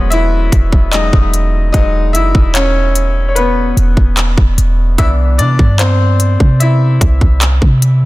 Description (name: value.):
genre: contemporary R&B.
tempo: 74 BPM.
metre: 4/4.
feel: straight.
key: E major.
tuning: A4 = 437 Hz.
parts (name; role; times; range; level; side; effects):
bright grand piano; accompaniment; 0.0-8.1 s; E3 to E5; -16 LUFS; left 3 dB; none.
clean 808-style bass; bass; 0.0-8.1 s; E1 to C3; -12 LUFS; equal; none.
trap drum kit; drums; 0.1-8.0 s; handclaps, hi-hat, kick drum; -12 LUFS; equal; none.
room: little or no reverb.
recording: dense, heavily limited modern master.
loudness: -9 LUFS.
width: side -18 dB against mid.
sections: 0.0-8.1 A section.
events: grand piano solo 0.0-8.1.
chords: 0.0 Emaj9; 5.0 Cmaj9.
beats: 0.12 0.93 | 1.74 2.55 3.36 4.17 | 4.98 5.79 6.61 7.42.